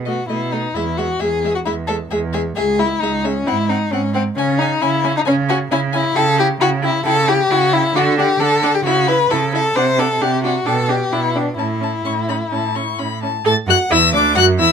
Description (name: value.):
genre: quick classical-period movement for string quartet.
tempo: 133 BPM.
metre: 4/4.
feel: straight.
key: D major from 6.2 s.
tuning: A4 = 440 Hz.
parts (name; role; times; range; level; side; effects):
rich cello; bass; 0.0-14.7 s; C#2 to D3; -20 LUFS; right 5 dB; none.
rich violin; melody; 0.1-14.7 s; D#5 to A6; -21 LUFS; left 9 dB; none.
warm violin; second line; 0.1-14.7 s; B#3 to A5; -18 LUFS; left 4 dB; none.
rich viola; accompaniment; 0.1-14.7 s; G#3 to A4; -22 LUFS; right 4 dB; none.
room: light reverb.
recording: close, detailed microphones.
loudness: -15 LUFS.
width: side -7 dB against mid.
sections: 0.0-13.5 A section; 13.5-14.7 B section.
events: none.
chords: 0.0 B7; 0.8 E; 2.6 C#m; 3.5 G#7; 4.4 C#5; 6.2 C#dim; 8.0 D; 8.9 A69/C#; 9.8 D7/C; 10.7 G/B; 11.6 A; 13.5 D.